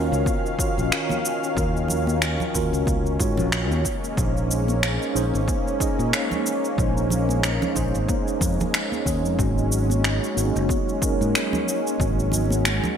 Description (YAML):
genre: sunset chillout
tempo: 92 BPM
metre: 4/4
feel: swing 57% on 16ths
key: Eb dorian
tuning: A4 = 441 Hz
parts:
  - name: mellow tine electric piano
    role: accompaniment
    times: 0.0-13.0 s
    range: Bb3 to Eb5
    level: -27 LUFS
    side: equal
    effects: medium stereo tremolo, auto-pan, ping-pong delay
  - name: lush unison pad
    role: sustained chords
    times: 0.0-13.0 s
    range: Eb3 to F5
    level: -27 LUFS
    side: equal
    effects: chorus
  - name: fingered electric bass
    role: bass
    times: 0.0-12.8 s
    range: Gb1 to Bb2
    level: -24 LUFS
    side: equal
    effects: none
  - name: electronic shaker and finger snaps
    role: drums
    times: 0.1-13.0 s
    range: none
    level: -27 LUFS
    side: equal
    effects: overdrive, gated reverb
  - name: electronic kick drum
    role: drums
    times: 0.3-12.1 s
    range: none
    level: -26 LUFS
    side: equal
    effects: overdrive
  - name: congas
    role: percussion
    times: 0.3-13.0 s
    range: none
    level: -32 LUFS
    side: right 3 dB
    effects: none
room: moderate plate reverb, RT60 2.6 s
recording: bright 1980s-style digital production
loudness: -20 LUFS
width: side -8 dB against mid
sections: 0.0-13.0 A section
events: none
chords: 0.0 Ebm9; 3.9 Bbm11; 9.4 Ab9sus4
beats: 0.26 0.92 | 1.57 2.22 2.87 3.52 | 4.18 4.83 5.48 6.13 | 6.79 7.44 8.09 8.74 | 9.39 10.05 10.70 11.35 | 12.00 12.65